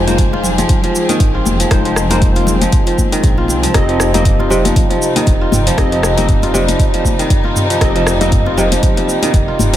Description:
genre	afro house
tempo	118 BPM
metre	4/4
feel	swing 57% on 16ths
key	F minor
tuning	A4 = 440 Hz
part	warm symphonic string section	sustained chords	0.0-9.8 s	C3 to Ab4	-21 LUFS	left 1 dB	sidechain pumping
part	kora	arpeggios	0.0-9.8 s	C3 to F4	-19 LUFS	right 1 dB	sidechain pumping, dub echo
part	warm analog keys	stabs	0.0-9.8 s	Ab3 to Eb5	-19 LUFS	left 2 dB	chorus, sidechain pumping, dub echo
part	dark detuned saw bass	bass	0.0-9.8 s	F1 to C2	-19 LUFS	equal	tube saturation, sidechain pumping
part	afro-pop drum kit	drums	0.1-9.8 s	cabasa, hi-hat, rim click, toms	-20 LUFS	equal	none
part	congas	percussion	0.1-9.7 s	none	-22 LUFS	left 3 dB	none
part	electronic kick drum	drums	0.2-9.5 s	none	-14 LUFS	equal	none
room	little or no reverb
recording	none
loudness	-11 LUFS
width	side -12 dB against mid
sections	0.0-9.8 A section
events	none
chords	0.0 Fm7; 3.7 Cm/F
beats	0.18 0.69 1.20 | 1.71 2.22 2.73 3.23 | 3.74 4.25 4.76 5.27 | 5.78 6.29 6.79 7.30 | 7.81 8.32 8.83 9.34

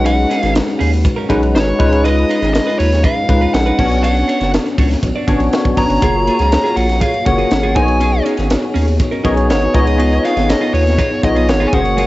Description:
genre	polished 1980s jazz-funk pop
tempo	121 BPM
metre	4/4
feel	straight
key	unclear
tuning	A4 = 440 Hz
part	dark smooth lead guitar	melody	0.0-12.1 s	C#5 to A#5	-19 LUFS	equal	overdrive, cassette tape
part	bell-like tine electric piano	accompaniment	0.0-12.1 s	G#3 to C#5	-16 LUFS	left 2 dB	ensemble chorus, cassette tape
part	clean electric guitar	riff	0.0-12.1 s	G#3 to D5	-24 LUFS	right 4 dB	lush chorus, cassette tape
part	saturated sub bass	bass	0.0-12.1 s	F#1 to D#2	-16 LUFS	equal	none
part	crisp fusion drum kit	drums	0.1-12.1 s	crash cymbal, hi-hat, kick drum, ride cymbal, snare drum	-19 LUFS	equal	cassette tape
room	small room ambience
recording	home recording on cassette, nothing above 7.8 kHz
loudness	-12 LUFS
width	side -17 dB against mid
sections	0.0-12.1 A section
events	none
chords	0.0 B69; 1.8 C#9; 3.8 Bmadd9; 6.0 F#maj9; 7.8 B69; 9.7 C#9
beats	| 0.06 0.55 1.05 1.55 | 2.04 2.54 3.04 3.54 | 4.03 4.53 5.03 5.52 | 6.02 6.52 7.01 7.51 | 8.01 8.50 9.00 9.50 | 9.99 10.49 10.99 11.48 | 11.98

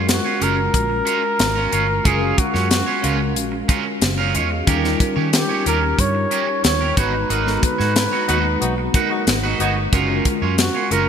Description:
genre	polished 1980s jazz-funk pop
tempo	92 BPM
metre	4/4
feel	straight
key	F# major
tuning	A4 = 441 Hz
part	mellow tine electric piano	accompaniment	0.0-11.1 s	G3 to A#5	-24 LUFS	left 2 dB	medium stereo tremolo, ensemble chorus
part	electric guitar at the edge of break-up	riff	0.0-11.1 s	C#4 to C#5	-23 LUFS	right 6 dB	lush chorus
part	vintage muted fingered electric bass	bass	0.0-11.1 s	F#1 to D#3	-23 LUFS	equal	none
part	breathy flugelhorn	melody	0.1-11.1 s	F#4 to C#5	-22 LUFS	equal	none
part	tight funk drum kit	drums	0.1-11.1 s	hi-hat, kick drum, snare drum	-20 LUFS	left 1 dB	gated reverb
part	mellow horn section	second line	8.3-9.8 s	F#3 to F#4	-27 LUFS	left 2 dB	digital delay
room	moderate lush hall reverb, RT60 2.6 s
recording	bright 1980s-style digital production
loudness	-16 LUFS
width	side -7 dB against mid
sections	0.0-11.1 A section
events	band accent 7.3-9.9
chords	0.0 F#maj7; 4.7 D#7; 7.0 G#m7; 9.9 F#maj7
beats	0.09 0.74 1.40 | 2.05 2.71 3.37 4.02 | 4.68 5.33 5.99 6.65 | 7.30 7.96 8.62 9.27 | 9.93 10.58

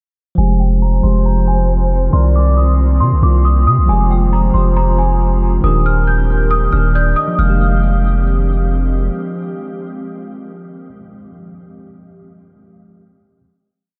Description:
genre	hip hop, trap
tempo	137 BPM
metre	4/4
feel	half-time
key	F dorian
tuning	A4 = 440 Hz
part	worn celesta	melody	0.4-8.7 s	G5 to G6	-23 LUFS	equal	analog chorus, low-pass filter, tape echo
part	hollow clarinet-like synth lead	second line	0.4-8.7 s	Bb4 to F5	-29 LUFS	equal	chorus, tape echo
part	mellow tine electric piano	accompaniment	0.4-13.4 s	Eb3 to Bb4	-24 LUFS	equal	low-pass filter
part	glassy FM pad	sustained chords	0.9-11.0 s	Eb3 to G4	-28 LUFS	equal	ensemble chorus, built-in reverb, low-pass filter
part	long sustained 808-style bass	bass	0.4-9.1 s	Eb1 to C3	-15 LUFS	equal	none
room	moderate huge ambient reverb, RT60 7.9 s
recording	dreamy mix soaked in reverb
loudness	-14 LUFS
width	mono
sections	0.4-7.4 breakdown; 7.4-10.9 final chord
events	filter sweep 0.4-7.4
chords	0.4 Fmadd9; 2.1 Cm7; 3.9 Fmadd9; 5.6 Ebmaj7; 7.4 Fmadd9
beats	| 0.38 0.82 1.26 1.69 | 2.13 2.57 3.01 3.45 | 3.88 4.32 4.76 5.20 | 5.64 6.07 6.51 6.95 | 7.39 7.83 8.26 8.70 | 9.14 9.58 10.02 10.45

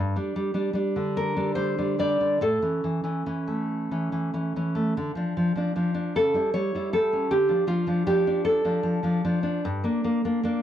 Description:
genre	romantic piece for solo classical guitar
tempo	46-53 BPM (dotted quarters)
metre	6/8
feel	rubato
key	D minor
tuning	A4 = 440 Hz
part	nylon-string guitar	solo	0.0-10.6 s	G2 to D5	-23 LUFS	equal	none
room	light reverb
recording	dry, close 1970s-style studio recording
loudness	-23 LUFS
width	side -10 dB against mid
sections	0.0-10.6 A section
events	none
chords	0.0 G5; 2.4 A; 5.0 Dm; 6.2 A7/C#; 7.3 Dm; 9.6 Gm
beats	1.13 | 2.40 3.69 | 4.96 6.16 | 7.33 8.47 | 9.64

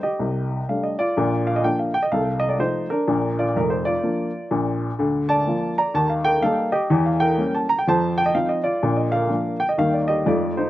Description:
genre	jazz, stride piano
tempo	125 BPM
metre	4/4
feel	swing 62% on 8ths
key	Bb major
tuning	A4 = 437 Hz
part	warm baby grand piano	solo	0.0-10.7 s	F1 to Bb5	-19 LUFS	equal	slapback echo
room	light reverb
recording	recorded outdoors, with no room sound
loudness	-19 LUFS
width	side -14 dB against mid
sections	0.0-10.7 A section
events	none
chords	0.0 F13; 1.1 Bb; 2.1 F7/C; 3.1 Bb; 5.0 Bb/D; 5.9 Eb; 6.9 Edim7; 7.9 F5; 8.8 Bb; 9.8 Eb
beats	0.19 0.67 | 1.15 1.63 2.11 2.59 | 3.07 3.55 4.03 4.51 | 4.99 5.46 5.95 6.42 | 6.90 7.38 7.86 8.34 | 8.82 9.30 9.78 10.26

